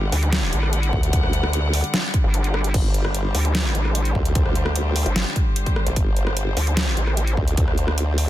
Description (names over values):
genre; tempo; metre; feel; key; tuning
heavy wobble dubstep; 149 BPM; 4/4; half-time; unclear; A4 = 443 Hz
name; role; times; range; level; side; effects
warm studio string section; sustained chords; 0.0-8.3 s; D3 to F#5; -28 LUFS; left 2 dB; sidechain pumping
formant-sweep wobble bass; bass; 0.0-8.3 s; G1 to D2; -22 LUFS; equal; chorus, overdrive
vowel-sweep wobble bass; bass; 0.1-7.4 s; G1 to D2; -20 LUFS; equal; chorus, overdrive
dubstep drum kit; drums; 0.1-8.3 s; crash cymbal, hi-hat, rim click, snare drum; -26 LUFS; equal; overdrive
electronic kick drum; drums; 0.9-7.7 s; none; -21 LUFS; equal; none
room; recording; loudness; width
little or no reverb; dense, heavily limited modern master; -18 LUFS; side -14 dB against mid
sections
0.0-8.3 A section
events
kick drops out 2.3-2.7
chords
0.0 G5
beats
0.33 0.73 | 1.13 1.53 1.94 2.34 | 2.74 3.15 3.55 3.95 | 4.35 4.76 5.16 5.56 | 5.96 6.37 6.77 7.17 | 7.57 7.98